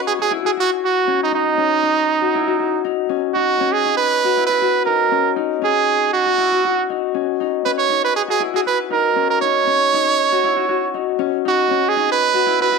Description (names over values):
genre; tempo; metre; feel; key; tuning
afrobeat; 118 BPM; 4/4; swing 54% on 16ths; unclear; A4 = 440 Hz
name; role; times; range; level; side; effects
Celtic harp; arpeggios; 0.0-12.8 s; C#4 to F#4; -21 LUFS; left 15 dB; none
brilliant trumpet; melody; 0.1-12.8 s; D#4 to C#5; -16 LUFS; right 7 dB; none
room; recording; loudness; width
wet spring reverb, RT60 1.8 s, small room reverb; 1960s-style stereo with parts hard left and right; -15 LUFS; side -4 dB against mid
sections
0.0-12.8 A section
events
none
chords
0.0 C#madd9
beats
0.05 0.56 | 1.06 1.57 2.08 2.58 | 3.09 3.60 4.10 4.61 | 5.12 5.62 6.13 6.64 | 7.14 7.65 8.16 8.66 | 9.17 9.68 10.19 10.69 | 11.20 11.71 12.21 12.72